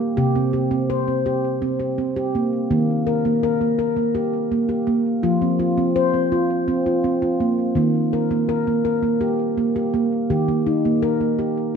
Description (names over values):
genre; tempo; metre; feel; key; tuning
world meditative, meditative tuned percussion; 166 BPM (eighths); 7/8; straight; Eb major pentatonic; A4 = 440 Hz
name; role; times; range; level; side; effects
handpan; solo; 0.0-11.8 s; C3 to C5; -18 LUFS; equal; ping-pong delay
room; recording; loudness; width
moderate scoring stage reverb, RT60 1.5 s, small room ambience; none; -18 LUFS; side -6 dB against mid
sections
0.0-11.8 A section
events
none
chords
0.2 C5; 2.7 Eb; 5.2 F5; 7.8 Eb